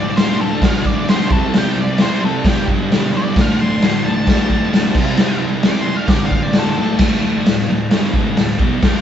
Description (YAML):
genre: garage rock duo or trio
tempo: 132 BPM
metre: 4/4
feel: straight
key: D mixolydian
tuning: A4 = 440 Hz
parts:
  - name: octave-fuzz lead guitar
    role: melody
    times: 0.0-7.0 s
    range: G4 to D6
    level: -24 LUFS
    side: left 1 dB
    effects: distortion
  - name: thick fuzz guitar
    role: riff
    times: 0.0-9.0 s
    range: D2 to C4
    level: -19 LUFS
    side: equal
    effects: distortion
  - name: overdriven combo organ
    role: sustained chords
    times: 0.1-6.8 s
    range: B2 to C5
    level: -30 LUFS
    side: right 1 dB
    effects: none
  - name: raw garage drum kit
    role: drums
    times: 0.2-8.9 s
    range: crash cymbal, kick drum, snare drum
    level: -15 LUFS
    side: equal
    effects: none
room: little or no reverb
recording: band playing live in one room, nothing above 7.8 kHz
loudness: -13 LUFS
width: side -9 dB against mid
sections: 0.0-7.0 A section; 7.0-9.0 B section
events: lead electric guitar solo 0.0-7.0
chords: 0.0 D; 1.3 C; 2.4 G; 3.4 D; 4.9 C; 6.1 D; 7.0 D5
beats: 0.16 0.62 1.07 | 1.53 1.98 2.44 2.89 | 3.35 3.81 4.26 4.72 | 5.17 5.63 6.09 6.54 | 7.00 7.46 7.91 8.37 | 8.83